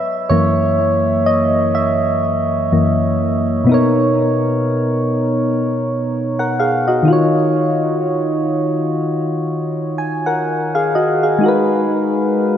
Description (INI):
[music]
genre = R&B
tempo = 62 BPM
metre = 4/4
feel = swing 58% on 16ths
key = unclear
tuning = A4 = 440 Hz
[part]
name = soft electric-piano-like synth keys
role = solo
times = 0.0-12.6 s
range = F#2 to G#5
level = -14 LUFS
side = equal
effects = chorus, diffuse ambient delay
[sound]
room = wet plate reverb, RT60 3.2 s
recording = dreamy mix soaked in reverb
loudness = -14 LUFS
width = side -9 dB against mid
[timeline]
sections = 0.0-3.7 A section; 3.7-12.6 B section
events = synth keys solo 0.0-3.7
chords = 0.0 F#7; 3.7 Bmaj9; 7.1 D#m9; 11.4 G#m9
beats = 0.78 1.75 2.72 | 3.69 4.66 5.62 6.59 | 7.56 8.53 9.49 10.46 | 11.43 12.40